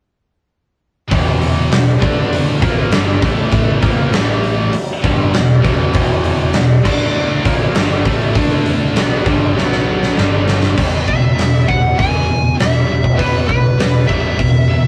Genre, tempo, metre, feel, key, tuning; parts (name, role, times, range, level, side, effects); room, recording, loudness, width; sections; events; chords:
hard rock; 99 BPM; 4/4; straight; A4 = 440 Hz
dark French horn section; sustained chords; 1.1-10.8 s; D3 to C#5; -32 LUFS; equal
high-gain distorted guitar; riff; 1.1-14.9 s; E2 to D4; -28 LUFS; equal; distortion
raw garage guitar; riff; 1.1-10.8 s; E2 to D4; -22 LUFS; equal; overdrive
scooped high-gain guitar; riff; 1.1-14.9 s; E2 to D4; -21 LUFS; equal; distortion
picked electric bass; bass; 1.1-14.9 s; E1 to E2; -24 LUFS; equal
huge arena drum kit; drums; 1.1-14.5 s; crash cymbal, hi-hat, kick drum, snare drum; -18 LUFS; equal
smooth overdriven lead guitar; melody; 11.1-14.9 s; B4 to G#5; -22 LUFS; equal
wet booth ambience, RT60 0.2 s; rough rehearsal-room recording, cassette tape; -14 LUFS; mono
1.1-10.8 A section; 10.8-14.9 B section
drum fill 9.6-10.8
1.1 E5; 2.0 D5; 2.6 E5; 3.2 A5; 3.8 E5; 4.1 A5; 4.7 E5; 6.8 D5; 7.4 E5; 8.3 D5; 9.0 E5; 9.6 B5; 10.2 G5; 10.8 E5